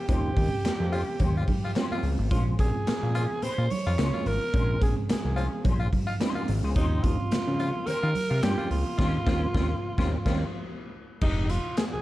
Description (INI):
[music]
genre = funk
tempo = 108 BPM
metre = 4/4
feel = swing 56% on 16ths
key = unclear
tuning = A4 = 440 Hz
[part]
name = growling alto saxophone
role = melody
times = 0.0-12.0 s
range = Eb4 to Db5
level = -32 LUFS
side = right 2 dB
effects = slapback echo
[part]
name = semi-hollow electric guitar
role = accompaniment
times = 0.1-11.8 s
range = Ab3 to C5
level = -38 LUFS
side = left 5 dB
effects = wah, harmonic tremolo
[part]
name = reed electric piano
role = stabs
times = 0.1-10.4 s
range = G3 to Ab4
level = -35 LUFS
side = right 4 dB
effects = fast tremolo
[part]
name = fat analog bass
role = bass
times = 0.1-12.0 s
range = F1 to Eb3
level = -27 LUFS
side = equal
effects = none
[part]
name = raw garage drum kit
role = drums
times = 0.1-11.9 s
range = crash cymbal, handclaps, hi-hat, kick drum, snare drum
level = -28 LUFS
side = equal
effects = none
[part]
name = congas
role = percussion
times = 0.1-11.9 s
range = none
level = -37 LUFS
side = right 3 dB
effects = none
[part]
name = raspy baritone saxophone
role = second line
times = 0.9-10.4 s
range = F4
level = -38 LUFS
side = left 4 dB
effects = none
[sound]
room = light reverb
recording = dark, warm production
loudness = -24 LUFS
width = side -16 dB against mid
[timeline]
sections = 0.0-11.2 A section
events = band accent 9.0-11.2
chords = 0.0 Eb13; 2.3 Bbm9; 6.8 Eb13; 11.2 Fm9